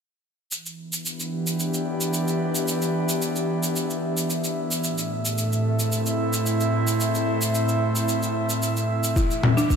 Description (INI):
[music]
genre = organic downtempo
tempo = 111 BPM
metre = 4/4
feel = straight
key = E minor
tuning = A4 = 440 Hz
[part]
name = airy breathy pad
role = sustained chords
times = 0.8-9.8 s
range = A2 to E5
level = -23 LUFS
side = equal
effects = chorus, sidechain pumping
[part]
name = cabasa and congas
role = drums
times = 0.5-9.8 s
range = none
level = -27 LUFS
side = left 1 dB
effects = none
[part]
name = buzzing marimba with soft mallets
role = arpeggios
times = 9.2-9.7 s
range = D4 to E4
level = -25 LUFS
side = equal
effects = ping-pong delay
[part]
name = electronic kick drum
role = drums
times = 9.2-9.8 s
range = none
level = -21 LUFS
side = equal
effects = none
[sound]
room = wet lush hall reverb, RT60 2.1 s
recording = bright 1980s-style digital production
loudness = -22 LUFS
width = side -6 dB against mid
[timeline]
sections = 0.5-9.8 A section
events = filter sweep on analog synth pad 0.5-9.8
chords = 0.5 Em7; 4.8 Am; 9.2 E7(no3)